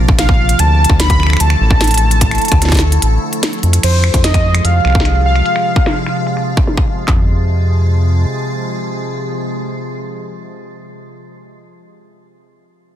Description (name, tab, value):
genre	IDM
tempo	148 BPM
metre	4/4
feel	straight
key	unclear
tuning	A4 = 440 Hz
part	icy glass pad	sustained chords	0.0-10.7 s	C3 to Bb4	-21 LUFS	equal	chorus, built-in reverb
part	round analog bass	bass	0.0-8.3 s	A1 to F2	-12 LUFS	equal	tube saturation
part	industrial drum kit	drums	0.1-7.2 s	handclaps, kick drum	-14 LUFS	equal	distortion, small room ambience
part	warm velvety synth lead	melody	0.2-6.6 s	C5 to B5	-18 LUFS	equal	chorus, ping-pong delay
part	industrial drum kit	drums	0.2-7.1 s	crash cymbal, finger snaps, hi-hat, snare drum	-18 LUFS	equal	low-pass filter on hats, small room ambience, low-pass filter on snare, low-pass filter on cymbals
room	digital ambience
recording	dense, heavily limited modern master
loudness	-11 LUFS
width	side -11 dB against mid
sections	0.0-3.8 A section; 3.8-7.1 B section; 7.1-10.3 C section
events	break 3.0-3.8; drum fill 3.6; filter sweep on drum 3.8-7.1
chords	0.0 Bbsus2; 0.6 Dmadd9; 3.8 Fm